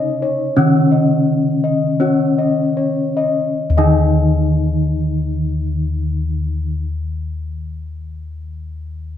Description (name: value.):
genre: Javanese gamelan.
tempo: 36-45 BPM.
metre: 4/4.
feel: straight.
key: unclear.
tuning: A4 = 440 Hz.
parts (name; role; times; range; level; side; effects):
gamelan-type bronze metallophone; melody; 0.0-6.8 s; Db4-25c to Eb4; -19 LUFS; left 4 dB; none.
gamelan-type bronze metallophone; accompaniment; 0.0-6.8 s; Db3-25c to Eb3; -22 LUFS; right 4 dB; none.
gamelan-type bossed gongs; arpeggios; 0.0-6.8 s; Db5-25c to Eb5; -21 LUFS; left 3 dB; none.
gamelan-type bossed gongs; bass; 0.0-6.8 s; Eb2 to Gb4-45c; -19 LUFS; left 1 dB; none.
room: light reverb.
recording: close, detailed microphones.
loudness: -15 LUFS.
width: side -10 dB against mid.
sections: 0.0-3.6 A section; 3.6-9.2 B section.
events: slowing down 0.0-3.6.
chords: none.